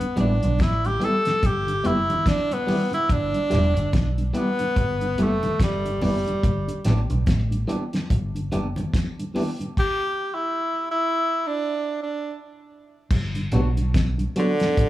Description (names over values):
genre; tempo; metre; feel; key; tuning
roots reggae; 72 BPM; 4/4; swing 59% on 16ths; G major; A4 = 441 Hz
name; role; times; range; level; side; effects
warm tenor saxophone; melody; 0.0-14.9 s; D3 to A4; -24 LUFS; equal; tape echo
mellow tonewheel organ; accompaniment; 0.0-14.7 s; G2 to F#4; -30 LUFS; left 1 dB; chorus vibrato, slow rotary speaker
cloth-damped thuddy drum kit; drums; 0.0-14.9 s; crash cymbal, hi-hat, kick drum, snare drum; -24 LUFS; equal; slapback echo
electric guitar at the edge of break-up; accompaniment; 0.2-14.5 s; E3 to G4; -29 LUFS; right 1 dB; tape echo
vintage muted fingered electric bass; bass; 0.2-14.2 s; E1 to B1; -24 LUFS; equal; none
congas; percussion; 0.2-14.9 s; none; -31 LUFS; right 3 dB; none
room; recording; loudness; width
light reverb, small room ambience; none; -20 LUFS; side -15 dB against mid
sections
0.0-13.1 A section; 13.1-14.9 B section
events
tenor saxophone solo 0.0-13.1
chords
0.0 G6; 9.8 N.C.; 13.1 Gmaj7